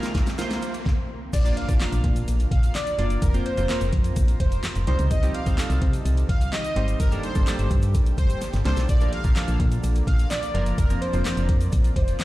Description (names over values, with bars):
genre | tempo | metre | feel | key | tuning
dance-pop | 127 BPM | 4/4 | straight | Bb major | A4 = 441 Hz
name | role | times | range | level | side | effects
warm analog keys | accompaniment | 0.0-11.9 s | F3 to F5 | -31 LUFS | right 2 dB | chorus, sidechain pumping
granular cloud pad | sustained chords | 0.0-12.2 s | C3 to D5 | -36 LUFS | left 1 dB | built-in reverb, sidechain pumping
smooth R&B drum kit | drums | 0.0-12.2 s | crash cymbal, handclaps, hi-hat, kick drum, snare drum | -23 LUFS | equal | none
tube shaker | percussion | 0.0-12.2 s | none | -47 LUFS | left 6 dB | none
riser and impact | sound effects | 0.0-3.2 s | none | -34 LUFS | equal | none
airy dreamy lead | melody | 1.3-12.2 s | Bb4 to F5 | -31 LUFS | equal | chorus, sidechain pumping, tape echo
solid FM bass | bass | 1.3-12.1 s | F1 to C3 | -23 LUFS | equal | sidechain pumping
room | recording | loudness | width
little or no reverb | played on a big sound system in a bare room, large studio reverb | -20 LUFS | side -17 dB against mid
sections
0.0-1.3 A section; 1.3-12.2 B section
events
build-up 0.0-1.3; drum fill 0.0-0.9, 8.4-8.9; riser 0.0-1.3; drop 1.3-12.2; impact 1.3-3.2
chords
0.0 Fsus4; 1.3 Bb; 3.2 Fsus4; 4.9 Cm; 7.0 Gmadd9; 8.9 Bb; 10.8 Fsus4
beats
0.39 0.86 | 1.33 1.80 2.28 2.75 | 3.22 3.69 4.17 4.64 | 5.11 5.58 6.06 6.53 | 7.00 7.47 7.95 8.42 | 8.89 9.36 9.84 10.31 | 10.78 11.25 11.73 12.20